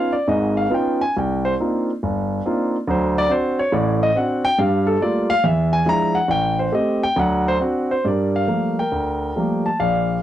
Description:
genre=solo jazz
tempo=139 BPM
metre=4/4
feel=swing 68% on 8ths, rubato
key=G minor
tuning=A4 = 439 Hz
part: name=warm grand piano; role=solo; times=0.0-10.2 s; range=G1 to Bb5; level=-17 LUFS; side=equal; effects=none
room=light reverb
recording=dry, close 1970s-style studio recording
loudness=-17 LUFS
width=side -12 dB against mid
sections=0.0-8.1 A section; 8.1-10.2 B section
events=grand piano solo 0.0-8.1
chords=0.0 C#9; 1.1 Cm11; 2.9 D7; 4.6 Gm9; 5.4 E7b9; 6.3 Am7b5; 7.2 D7; 8.1 Gm9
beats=0.26 0.70 | 1.14 1.57 2.01 2.44 | 2.87 3.29 3.72 4.14 | 4.57 5.00 5.43 5.86 | 6.29 6.73 7.16 7.61 | 8.05 8.49 8.92 9.36 | 9.79 10.22

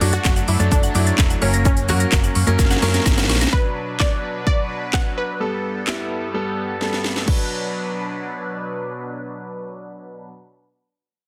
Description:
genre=dance-pop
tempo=128 BPM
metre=4/4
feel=straight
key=B minor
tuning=A4 = 439 Hz
part: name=analog pluck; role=melody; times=0.0-6.8 s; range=C#4 to F#5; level=-29 LUFS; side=equal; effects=chorus, low-pass filter, digital delay
part: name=bright concert grand piano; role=accompaniment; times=0.0-10.3 s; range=F#3 to B4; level=-28 LUFS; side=equal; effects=sidechain pumping, low-pass filter
part: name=soft supersaw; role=sustained chords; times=0.0-10.3 s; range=G2 to B4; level=-31 LUFS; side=equal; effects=phaser, sidechain pumping, low-pass filter
part: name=mallet-like synth pluck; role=arpeggios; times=0.0-3.5 s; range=A4 to A#6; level=-31 LUFS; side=equal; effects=chorus, sidechain pumping, digital delay
part: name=hollow-body short-scale fingered electric bass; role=bass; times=0.0-3.4 s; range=E1 to F#2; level=-22 LUFS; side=equal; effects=sidechain pumping
part: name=house drum kit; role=drums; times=0.0-7.4 s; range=crash cymbal, handclaps, hi-hat, kick drum, shaker, snare drum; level=-21 LUFS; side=equal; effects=none
part: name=egg shaker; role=percussion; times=0.0-3.5 s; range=none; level=-38 LUFS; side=equal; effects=none
room=light reverb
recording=dense, heavily limited modern master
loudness=-20 LUFS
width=mono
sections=0.0-3.5 A section; 3.5-7.3 B section; 7.3-11.0 C section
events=drum fill 2.6-3.5, 6.8-7.3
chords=0.0 D/F#; 1.4 F#; 3.5 Bm; 5.4 Gadd9; 7.3 Bm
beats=0.25 0.71 1.18 | 1.65 2.12 2.59 3.06 | 3.53 4.00 4.46 4.93 | 5.40 5.87 6.34 6.81 | 7.28 7.75 8.21 8.68 | 9.15 9.62 10.09

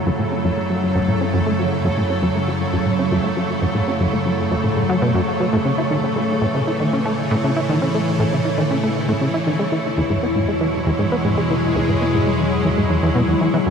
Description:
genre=ambient, sequencer-driven space music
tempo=118 BPM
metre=4/4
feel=straight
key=unclear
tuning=A4 = 440 Hz
part: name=evolving wavetable pad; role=sustained chords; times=0.0-13.7 s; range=B2 to A4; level=-20 LUFS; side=left 1 dB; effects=ensemble chorus, built-in reverb
part: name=analog drone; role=bass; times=0.0-13.7 s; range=E2 to A2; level=-27 LUFS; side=equal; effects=chorus
part: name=wind-like tuned noise texture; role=texture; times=0.0-13.7 s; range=C#5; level=-28 LUFS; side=right 6 dB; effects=built-in reverb
part: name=plucky analog bass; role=riff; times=0.1-13.7 s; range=E2 to E4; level=-21 LUFS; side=equal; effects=ping-pong delay
room=wet huge ambient reverb, RT60 7.3 s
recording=none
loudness=-17 LUFS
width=side -6 dB against mid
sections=0.0-13.7 A section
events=filter sweep on analog synth bass 0.0-13.7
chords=0.0 F#m7; 5.5 A; 9.6 Eadd9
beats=0.45 0.95 | 1.46 1.97 2.48 2.99 | 3.50 4.00 4.51 5.02 | 5.53 6.04 6.55 7.05 | 7.56 8.07 8.58 9.09 | 9.60 10.11 10.61 11.12 | 11.63 12.14 12.65 13.16 | 13.66

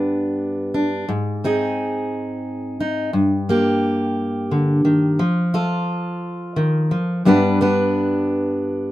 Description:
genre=folk, solo fingerstyle acoustic guitar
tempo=87 BPM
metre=3/4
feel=straight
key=unclear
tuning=A4 = 440 Hz
part: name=fingerpicked steel-string acoustic guitar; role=solo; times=0.0-8.9 s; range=G2 to B4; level=-18 LUFS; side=equal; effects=none
room=light reverb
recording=minimal, uncompressed stereo recording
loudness=-18 LUFS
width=side -15 dB against mid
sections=0.0-8.9 A section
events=none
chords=0.0 G; 1.1 Ab; 3.1 Eb/G; 5.2 F; 7.2 G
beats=0.38 | 1.07 1.76 2.45 | 3.14 3.83 4.51 | 5.19 5.88 6.56 | 7.25 7.94 8.64

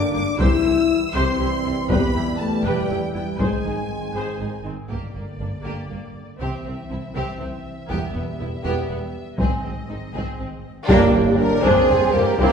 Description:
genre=cinematic, epic orchestral film score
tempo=80 BPM (dotted quarters)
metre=6/8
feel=straight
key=G phrygian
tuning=A4 = 439 Hz
part: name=clear symphonic violin section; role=melody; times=0.0-12.5 s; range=D4 to E6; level=-34 LUFS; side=left 2 dB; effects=none
part: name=bright symphonic violin section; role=second line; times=0.0-12.5 s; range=Bb3 to E6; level=-31 LUFS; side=left 2 dB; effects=none
part: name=clear trombone section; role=sustained chords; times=0.0-4.6, 10.9-12.5 s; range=D3 to D4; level=-28 LUFS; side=right 3 dB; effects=none
part: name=dark French horn section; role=sustained chords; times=0.0-12.5 s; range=D3 to D5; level=-24 LUFS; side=left 2 dB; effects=none
part: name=clear studio viola section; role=accompaniment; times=0.1-12.5 s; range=D3 to C5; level=-29 LUFS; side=right 1 dB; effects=none
part: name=rich studio cello section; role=bass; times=0.1-12.5 s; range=E2 to D4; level=-29 LUFS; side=right 3 dB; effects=none
part: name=rich symphonic double bass section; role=bass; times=0.1-12.5 s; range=E1 to G2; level=-29 LUFS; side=right 1 dB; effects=none
part: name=taiko ensemble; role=drums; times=0.4-12.5 s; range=none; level=-24 LUFS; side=equal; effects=none
part: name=timpani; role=percussion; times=4.9-5.6, 10.9-11.6 s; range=G2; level=-28 LUFS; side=equal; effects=none
part: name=flute section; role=second line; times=10.9-12.5 s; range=D4 to Bb4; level=-28 LUFS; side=left 3 dB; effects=none
part: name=rich symphonic string section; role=sustained chords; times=10.9-12.5 s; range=Bb4 to G5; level=-32 LUFS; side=equal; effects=none
part: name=tam-tam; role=percussion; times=10.9-12.5 s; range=none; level=-30 LUFS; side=equal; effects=none
part: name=impact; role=sound effects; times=11.0-12.4 s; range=none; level=-33 LUFS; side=equal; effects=none
room=wet recital hall reverb, RT60 1.5 s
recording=recorded in a church or concert hall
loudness=-19 LUFS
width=side -7 dB against mid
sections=0.0-4.9 A section; 4.9-10.9 B section; 10.9-12.5 C section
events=band accent 10.9-11.4; impact 10.9-12.4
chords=0.4 C; 1.9 Em; 3.4 Ab; 4.9 Gm; 6.4 C; 7.9 Em; 9.4 Ab; 10.9 Gm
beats=| 0.39 1.14 | 1.89 2.64 | 3.39 4.14 | 4.89 5.64 | 6.39 7.14 | 7.89 8.64 | 9.39 10.14 | 10.89 11.64 | 12.39

